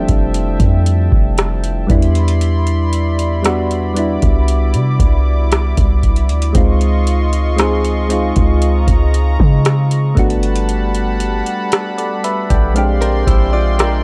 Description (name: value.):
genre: contemporary R&B.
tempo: 58 BPM.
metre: 4/4.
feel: straight.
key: unclear.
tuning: A4 = 440 Hz.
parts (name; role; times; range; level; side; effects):
soft electric-piano-like synth keys; accompaniment; 0.0-14.0 s; G3 to B5; -22 LUFS; equal; chorus.
warm analog pad; sustained chords; 0.0-14.0 s; F3 to D6; -26 LUFS; equal; chorus.
warm 808-style bass; bass; 0.0-14.0 s; F1 to Db3; -17 LUFS; equal; none.
booming analog drum machine; drums; 0.1-14.0 s; hi-hat, kick drum, rim click; -18 LUFS; equal; none.
direct-recorded clean electric guitar; arpeggios; 13.0-14.0 s; D4 to D5; -24 LUFS; equal; none.
room: digital ambience.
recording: dry, gritty hardware recording, cassette tape.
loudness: -15 LUFS.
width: mono.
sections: 0.0-14.0 A section.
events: synth keys fill 11.7-14.0.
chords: 0.0 Fmaj9; 1.9 Cmaj9; 6.5 Dbmaj9; 10.2 Gmaj9; 12.8 Bb13.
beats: 0.34 1.38 | 2.41 3.45 4.48 5.52 | 6.55 7.58 8.62 9.65 | 10.69 11.72 12.76 13.79.